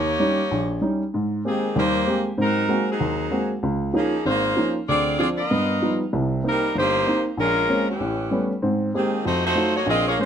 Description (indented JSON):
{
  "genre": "jazz",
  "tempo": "192 BPM",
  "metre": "4/4",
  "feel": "swing 60% on 8ths",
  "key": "Ab major",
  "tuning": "A4 = 440 Hz",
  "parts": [
    { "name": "bright saxophone section", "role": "melody", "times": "0.0-10.3 s", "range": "Eb3 to Eb5", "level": "-22 LUFS", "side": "equal", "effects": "none" },
    { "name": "warm baby grand piano", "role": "accompaniment", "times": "0.0-10.3 s", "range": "G1 to G4", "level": "-22 LUFS", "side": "equal", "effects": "none" }
  ],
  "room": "light reverb",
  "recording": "close, detailed microphones",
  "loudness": "-20 LUFS",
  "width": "side -8 dB against mid",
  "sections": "0.0-1.1 A section; 1.1-10.3 B section",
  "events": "none",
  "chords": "0.0 Eb7; 1.1 Abmaj9; 2.4 Ab9; 3.6 Db69; 4.9 Dm7b5; 5.5 G7alt; 6.1 Cm7; 7.4 Bbm9; 8.0 A9; 8.6 Abmaj9; 9.3 F7b9"
}